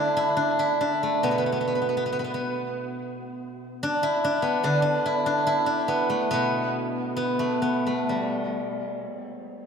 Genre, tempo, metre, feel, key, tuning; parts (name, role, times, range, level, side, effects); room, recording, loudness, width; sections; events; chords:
chinese traditional, Chinese solo plucked strings; 57-73 BPM; 4/4; rubato; A4 = 441 Hz
steel-string zither; solo; 0.0-9.7 s; B2 to E4; -23 LUFS; equal; diffuse ambient delay
wet lush hall reverb, RT60 1.8 s, small room ambience; dreamy mix soaked in reverb; -23 LUFS; side -6 dB against mid
0.0-9.7 A section